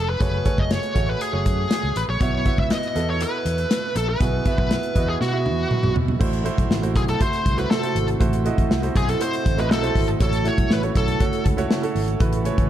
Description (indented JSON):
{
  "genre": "1980s-style pop",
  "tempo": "120 BPM",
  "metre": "4/4",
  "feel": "straight",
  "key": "unclear",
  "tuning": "A4 = 441 Hz",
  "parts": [
    { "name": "high-gain lead guitar", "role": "melody", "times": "0.0-11.4 s", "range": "F#4 to E5", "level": "-26 LUFS", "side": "equal", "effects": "distortion, tape echo, shimmer reverb" },
    { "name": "clear grand piano", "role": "accompaniment", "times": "0.0-12.7 s", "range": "A2 to E5", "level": "-27 LUFS", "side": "right 5 dB", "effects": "shimmer reverb" },
    { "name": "fingered electric bass", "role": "bass", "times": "0.0-12.7 s", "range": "F1 to B2", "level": "-25 LUFS", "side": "equal", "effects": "none" },
    { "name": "modern studio drum kit", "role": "drums", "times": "0.2-12.7 s", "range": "crash cymbal, hi-hat, kick drum, snare drum, toms", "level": "-22 LUFS", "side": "equal", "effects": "none" },
    { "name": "chorused pulse-width pad", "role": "sustained chords", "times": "6.6-12.7 s", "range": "C3 to G#5", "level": "-30 LUFS", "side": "equal", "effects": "shimmer reverb" }
  ],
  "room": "light reverb",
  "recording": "dark, warm production",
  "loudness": "-19 LUFS",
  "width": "side -11 dB against mid",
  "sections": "0.0-6.2 A section; 6.2-12.7 B section",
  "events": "drum fill 5.2-6.2",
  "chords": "0.0 F#madd9; 2.2 Bsus4; 6.2 Am6; 10.2 F#m7"
}